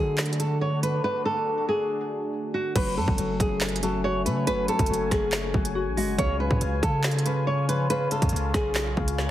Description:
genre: hip hop, drill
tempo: 140 BPM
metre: 4/4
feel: half-time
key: F# harmonic minor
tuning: A4 = 444 Hz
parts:
  - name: nylon-string guitar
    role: melody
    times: 0.0-9.3 s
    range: F#4 to C#5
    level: -27 LUFS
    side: right 1 dB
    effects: low-pass filter, digital delay
  - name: Celtic harp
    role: accompaniment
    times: 0.0-9.3 s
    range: C#3 to C#5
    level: -31 LUFS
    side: left 6 dB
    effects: low-pass filter
  - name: sweeping resonant pad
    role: sustained chords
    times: 0.0-9.3 s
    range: C#3 to G#5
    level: -34 LUFS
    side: right 1 dB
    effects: wide subtle chorus
  - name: hard-hitting 808-style bass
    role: bass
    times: 0.0-9.3 s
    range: F#1 to D3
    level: -28 LUFS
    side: equal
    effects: none
  - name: drill drum kit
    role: drums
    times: 0.2-9.3 s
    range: crash cymbal, handclaps, hi-hat, kick drum, rim click, snare drum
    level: -28 LUFS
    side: equal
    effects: none
room: digital ambience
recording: heavily compressed radio sound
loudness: -23 LUFS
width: side -13 dB against mid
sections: 0.0-2.8 A section; 2.8-9.3 B section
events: break 0.0-2.8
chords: 0.0 D; 2.8 F#madd9; 6.2 C#

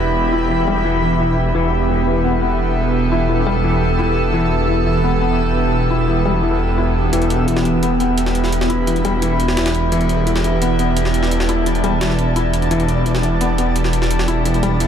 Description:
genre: dark technical drum and bass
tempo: 172 BPM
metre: 4/4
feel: straight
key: E minor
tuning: A4 = 441 Hz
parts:
  - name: metallic inharmonic drone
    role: sustained chords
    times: 0.0-14.9 s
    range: E3 to A4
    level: -21 LUFS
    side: right 2 dB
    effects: chorus, built-in reverb
  - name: phased detuned saw bass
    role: bass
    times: 0.0-14.9 s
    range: E1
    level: -19 LUFS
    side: equal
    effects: phaser, tube saturation
  - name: granular cloud pad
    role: texture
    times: 0.0-14.9 s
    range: B3 to E6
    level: -22 LUFS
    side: right 1 dB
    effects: built-in reverb
  - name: felt-muted upright piano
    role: arpeggios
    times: 0.3-14.9 s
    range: E3 to E4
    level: -22 LUFS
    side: left 4 dB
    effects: low-pass filter, dub echo
  - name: jungle sampler-style drum kit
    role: drums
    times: 7.1-14.9 s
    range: hi-hat, snare drum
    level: -25 LUFS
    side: equal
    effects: overdrive, high-pass filter on hats, high-pass filter on snare
room: light reverb, digital ambience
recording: none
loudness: -14 LUFS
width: side -8 dB against mid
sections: 0.0-14.9 A section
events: none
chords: 0.0 Em

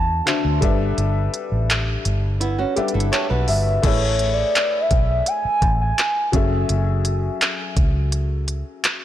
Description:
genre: contemporary R&B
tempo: 84 BPM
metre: 4/4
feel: straight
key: A major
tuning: A4 = 440 Hz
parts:
  - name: gliding portamento lead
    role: melody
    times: 0.0-6.3 s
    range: C#5 to A5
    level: -23 LUFS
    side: right 1 dB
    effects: chorus, tape echo
  - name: felt-muted upright piano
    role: accompaniment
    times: 0.0-9.0 s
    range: D3 to A5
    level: -26 LUFS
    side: left 6 dB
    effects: none
  - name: vintage muted fingered electric bass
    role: bass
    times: 0.0-8.6 s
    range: F#1 to E2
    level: -21 LUFS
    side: equal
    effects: none
  - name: smooth R&B drum kit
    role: drums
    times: 0.3-9.0 s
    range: crash cymbal, handclaps, hi-hat, kick drum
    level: -21 LUFS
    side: equal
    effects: none
  - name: flamenco guitar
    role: arpeggios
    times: 2.4-3.8 s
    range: B3 to C#5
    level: -25 LUFS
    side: right 5 dB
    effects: tape echo
room: light reverb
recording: blown-out, overdriven recording, overdrive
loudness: -18 LUFS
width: side -12 dB against mid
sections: 0.0-3.8 A section; 3.8-9.0 B section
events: kick muted 1.0-3.8; felt piano fill 2.8-3.8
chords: 0.0 D9; 0.6 G69; 3.8 Asus2; 6.3 F#m9

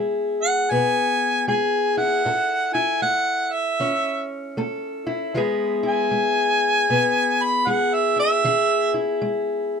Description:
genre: acoustic country blues, solo or duo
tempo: 78 BPM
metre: 4/4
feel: swing 62% on 8ths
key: E major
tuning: A4 = 440 Hz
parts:
  - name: fingerpicked steel-string acoustic guitar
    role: accompaniment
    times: 0.0-9.8 s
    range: A2 to A4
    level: -23 LUFS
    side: left 3 dB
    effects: none
  - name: mellow harmonica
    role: melody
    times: 0.4-8.9 s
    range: E5 to B5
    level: -20 LUFS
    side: right 1 dB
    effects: none
room: moderate studio reverb, RT60 0.5 s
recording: close, detailed microphones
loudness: -19 LUFS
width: side -6 dB against mid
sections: 0.0-9.8 A section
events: none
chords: 0.0 E; 2.2 A; 5.3 E

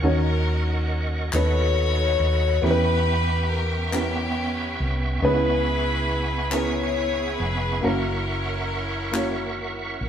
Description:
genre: slow gospel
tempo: 46 BPM (dotted quarters)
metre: 6/8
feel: straight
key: unclear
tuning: A4 = 439 Hz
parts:
  - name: dark upright piano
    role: accompaniment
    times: 0.0-10.1 s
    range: C#3 to C#5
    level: -26 LUFS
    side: equal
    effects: none
  - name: bright tonewheel organ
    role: sustained chords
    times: 0.0-10.1 s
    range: B3 to C#6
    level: -31 LUFS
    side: right 3 dB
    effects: slow rotary speaker, chorus vibrato
  - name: hollow-body short-scale fingered electric bass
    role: bass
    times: 0.0-10.1 s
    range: E#1 to E2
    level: -25 LUFS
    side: equal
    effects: none
  - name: bright chamber string section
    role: melody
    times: 0.1-10.0 s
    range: B3 to C#5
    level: -27 LUFS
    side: left 4 dB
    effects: none
  - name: group handclap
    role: percussion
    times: 1.3-9.5 s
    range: none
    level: -32 LUFS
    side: left 2 dB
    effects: none
room: moderate large studio reverb, RT60 1.0 s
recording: band playing live in one room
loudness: -21 LUFS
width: side -9 dB against mid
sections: 0.0-10.1 A section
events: none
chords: 0.0 D#m7; 1.3 B7/D#; 2.6 Em6; 5.2 C#m7; 7.8 F#7

